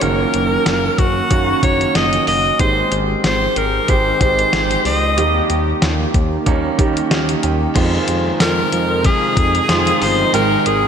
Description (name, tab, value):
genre	1980s-style pop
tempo	93 BPM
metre	4/4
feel	swing 55% on 16ths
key	Ab major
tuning	A4 = 438 Hz
part	edgy alto saxophone	melody	0.0-10.9 s	Gb4 to Eb5	-17 LUFS	left 1 dB	ping-pong delay, slapback echo
part	clear concert grand piano	accompaniment	0.0-10.9 s	Eb3 to G5	-20 LUFS	right 4 dB	slapback echo
part	sweeping resonant pad	sustained chords	0.0-10.9 s	C3 to G4	-25 LUFS	right 1 dB	chorus
part	smooth gliding synth bass	bass	0.0-10.9 s	Gb1 to F2	-22 LUFS	left 1 dB	none
part	clean 12-bit digital drum machine	drums	0.0-10.8 s	crash cymbal, hi-hat, kick drum, snare drum, tambourine	-19 LUFS	left 1 dB	none
part	overdriven electric guitar	accompaniment	7.7-10.9 s	F2 to Ab3	-27 LUFS	left 4 dB	none
room	wet lush hall reverb, RT60 1.9 s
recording	big arena sound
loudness	-13 LUFS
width	side -7 dB against mid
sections	0.0-7.8 A section; 7.8-10.9 B section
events	grand piano fill 6.8-7.8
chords	0.0 Gb6; 2.6 Abmaj7; 5.2 Eb; 7.8 Fm7; 10.3 Abmaj7